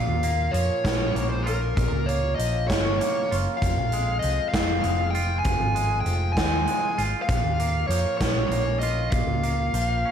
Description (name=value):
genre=quiet-loud alternative rock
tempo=65 BPM (dotted quarters)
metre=6/8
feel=straight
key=unclear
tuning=A4 = 440 Hz
part: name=dark smooth lead guitar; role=melody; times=0.0-10.1 s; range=Bb4 to Ab5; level=-26 LUFS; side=left 1 dB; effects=overdrive, slapback echo
part: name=twangy electric guitar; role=arpeggios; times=0.0-10.1 s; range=F2 to F4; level=-31 LUFS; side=right 4 dB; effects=slapback echo, analog delay
part: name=hollow-body short-scale fingered electric bass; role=bass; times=0.0-10.0 s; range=F1 to F2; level=-26 LUFS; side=equal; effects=none
part: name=big rock drum kit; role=drums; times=0.2-9.9 s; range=hi-hat, kick drum, snare drum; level=-27 LUFS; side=equal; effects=none
room=moderate recital hall reverb, RT60 1.6 s, small room ambience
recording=big arena sound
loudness=-22 LUFS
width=side -8 dB against mid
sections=0.0-10.1 A section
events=none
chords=0.0 Bbm; 3.6 Fm; 7.3 Bbm